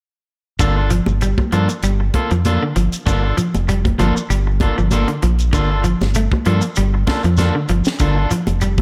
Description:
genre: afrobeat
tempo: 97 BPM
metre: 4/4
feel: swing 54% on 16ths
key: G minor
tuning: A4 = 440 Hz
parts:
  - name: electric guitar at the edge of break-up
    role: arpeggios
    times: 0.6-8.8 s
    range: D3 to A3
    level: -24 LUFS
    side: equal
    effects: none
  - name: electric guitar at the edge of break-up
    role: stabs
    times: 0.6-8.8 s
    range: Bb3 to A4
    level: -25 LUFS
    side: equal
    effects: none
  - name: deep dub fingered electric bass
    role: bass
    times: 0.6-8.8 s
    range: F1 to G2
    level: -20 LUFS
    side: equal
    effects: none
  - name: tight funk drum kit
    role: drums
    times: 0.6-8.8 s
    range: hi-hat, kick drum, snare drum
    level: -24 LUFS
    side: equal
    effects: none
  - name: congas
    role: percussion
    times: 0.6-8.8 s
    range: none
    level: -27 LUFS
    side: equal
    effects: none
  - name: shekere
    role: percussion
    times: 0.6-8.8 s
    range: none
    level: -27 LUFS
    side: equal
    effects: none
room: light reverb, small room ambience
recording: none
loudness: -17 LUFS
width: mono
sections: 0.6-8.8 A section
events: none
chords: 0.6 Gm9

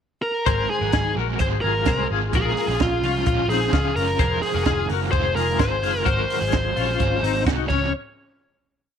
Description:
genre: jangly indie pop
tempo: 129 BPM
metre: 4/4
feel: straight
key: unclear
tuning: A4 = 440 Hz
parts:
  - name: bluesy overdriven lead guitar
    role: melody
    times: 0.2-7.9 s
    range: F4 to Db5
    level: -24 LUFS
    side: equal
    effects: distortion, slapback echo
  - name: crunchy overdriven guitar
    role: accompaniment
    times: 0.5-7.9 s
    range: F2 to Ab4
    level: -29 LUFS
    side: right 13 dB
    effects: tremolo
  - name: twelve-string electric guitar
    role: arpeggios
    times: 0.5-7.9 s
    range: C4 to C5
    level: -26 LUFS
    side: left 14 dB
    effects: tremolo, slapback echo
  - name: vintage muted picked electric bass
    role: bass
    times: 0.5-7.9 s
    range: F1 to Db2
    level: -26 LUFS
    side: equal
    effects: none
  - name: compact cocktail drum kit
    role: drums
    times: 0.5-7.8 s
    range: crash cymbal, hi-hat, kick drum, snare drum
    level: -25 LUFS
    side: right 2 dB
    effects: none
room: light reverb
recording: 1960s-style stereo with parts hard left and right, lossy compression artefacts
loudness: -19 LUFS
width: side -8 dB against mid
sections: 0.0-0.5 pickup bar; 0.5-7.9 verse; 7.9-9.0 final hit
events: none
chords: 0.5 Ab7; 2.3 Bbm7; 4.2 Fm7; 6.1 Ab7; 7.7 Dbmaj7; 7.9 N.C.

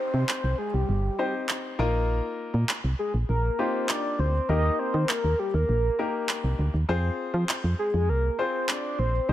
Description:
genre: dance-pop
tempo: 100 BPM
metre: 4/4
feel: straight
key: unclear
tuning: A4 = 438 Hz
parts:
  - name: soft octave-layered synth lead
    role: melody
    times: 0.0-9.3 s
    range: G4 to Eb5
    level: -28 LUFS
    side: equal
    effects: chorus, digital delay
  - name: clear grand piano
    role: accompaniment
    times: 0.0-9.3 s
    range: Bb3 to C5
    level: -30 LUFS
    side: left 4 dB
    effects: none
  - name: downlifter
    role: sound effects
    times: 0.0-2.1 s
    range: none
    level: -47 LUFS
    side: right 1 dB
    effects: none
  - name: solid FM bass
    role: bass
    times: 0.1-9.3 s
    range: G1 to F3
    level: -24 LUFS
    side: equal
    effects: none
  - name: electronic handclaps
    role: drums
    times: 0.3-8.8 s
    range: none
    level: -30 LUFS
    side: right 1 dB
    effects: overdrive
room: light reverb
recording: none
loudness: -24 LUFS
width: side -13 dB against mid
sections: 0.0-9.3 A section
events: none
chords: 0.0 Cm; 1.8 Bbsus4; 4.5 Eb; 6.9 Fm

